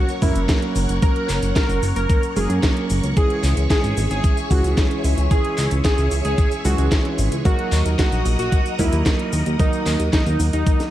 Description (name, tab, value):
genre	italo disco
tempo	112 BPM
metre	4/4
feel	straight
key	unclear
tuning	A4 = 440 Hz
part	wide unison lead	melody	0.0-10.8 s	D#4 to A#4	-26 LUFS	equal	tape echo
part	phased string machine	sustained chords	0.0-10.9 s	G#4 to D#6	-29 LUFS	left 1 dB	ensemble chorus, phaser
part	dark grand piano	stabs	0.0-10.9 s	E3 to A#4	-25 LUFS	right 2 dB	none
part	house drum kit	drums	0.1-10.9 s	cabasa, handclaps, hi-hat, snare drum	-27 LUFS	equal	studio reverb
part	chorused synth bass	bass	0.2-10.6 s	F#1 to F#2	-20 LUFS	equal	none
part	electronic kick drum	drums	0.2-10.8 s	none	-19 LUFS	equal	studio reverb
room	light reverb, digital ambience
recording	dark, warm production, vinyl crackle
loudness	-17 LUFS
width	side -13 dB against mid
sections	0.0-10.9 A section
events	none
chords	0.0 F#; 3.2 C#m; 7.5 D#m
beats	0.49 | 1.02 1.56 2.10 2.63 | 3.17 3.70 4.24 4.77 | 5.31 5.85 6.38 6.92 | 7.45 7.99 8.52 9.06 | 9.60 10.13 10.67